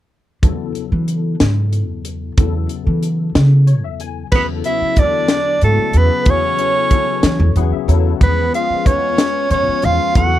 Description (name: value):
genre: electric jazz fusion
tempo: 62 BPM (dotted quarters)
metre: 6/8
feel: straight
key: E mixolydian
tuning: A4 = 440 Hz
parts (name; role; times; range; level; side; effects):
- barky tine electric piano; accompaniment; 0.4-10.4 s; C#3 to G#5; -23 LUFS; left 15 dB; ensemble chorus
- upright bass; bass; 0.4-10.4 s; E2 to E3; -16 LUFS; equal; none
- crisp fusion drum kit; drums; 0.4-10.3 s; crash cymbal, hi-hat, kick drum, snare drum; -16 LUFS; equal; none
- warm soprano saxophone; melody; 4.3-10.4 s; A4 to F#5; -17 LUFS; equal; none
- warm tenor saxophone; second line; 4.4-10.4 s; A3 to F#4; -24 LUFS; right 12 dB; none
room: little or no reverb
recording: none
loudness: -13 LUFS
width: side -13 dB against mid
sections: 0.4-4.3 A section; 4.3-10.4 B section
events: tine electric piano fill 3.4-4.3, 7.2-8.2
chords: 0.4 Esus24; 4.3 E9sus4; 6.3 Amaj9/E; 8.2 C#7/E